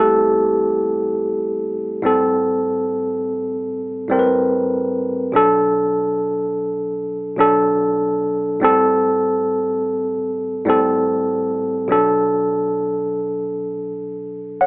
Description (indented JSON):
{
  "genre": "hip hop",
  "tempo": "73 BPM",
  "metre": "4/4",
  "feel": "swing 56% on 16ths",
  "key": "A dorian",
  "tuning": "A4 = 436 Hz",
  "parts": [
    { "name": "mellow tine electric piano", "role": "solo", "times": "0.0-14.7 s", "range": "A2 to F#5", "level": "-16 LUFS", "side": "equal", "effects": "medium stereo tremolo" }
  ],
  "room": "light reverb",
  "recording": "cassette tape, telephone sound",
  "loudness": "-16 LUFS",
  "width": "side -27 dB against mid",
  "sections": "0.0-2.0 A section; 2.0-14.7 B section",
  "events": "tine electric piano solo 0.0-2.0",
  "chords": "0.0 Am7; 5.3 Bm7; 8.6 Am7; 11.9 Bm7"
}